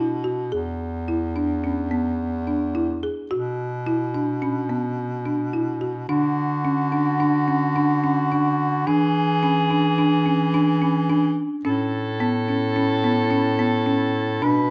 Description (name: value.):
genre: contemporary instrumental, chamber music in an uneven meter.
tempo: 108 BPM.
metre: 5/4.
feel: straight.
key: E mixolydian.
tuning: A4 = 440 Hz.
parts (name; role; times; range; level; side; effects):
folk marimba with medium mallets; arpeggios; 0.0-14.7 s; B3 to G#4; -25 LUFS; equal; none.
bright bass clarinet; bass; 0.0-14.7 s; E2 to E3; -27 LUFS; equal; none.
warm soprano saxophone; second line; 6.1-14.7 s; F#4 to B4; -27 LUFS; equal; none.
room: light reverb.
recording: dark, warm production.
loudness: -22 LUFS.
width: mono.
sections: 0.0-6.1 A section; 6.1-14.7 B section.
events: none.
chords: 0.0 B5; 0.5 E; 3.3 Bm; 6.1 Dmaj7; 8.9 E7; 11.6 Aadd9.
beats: | 0.52 1.08 1.64 2.19 2.75 | 3.31 3.86 4.42 4.98 5.53 | 6.09 6.64 7.20 7.76 8.31 | 8.87 9.42 9.98 10.54 11.09 | 11.65 12.20 12.76 13.31 13.87 | 14.43.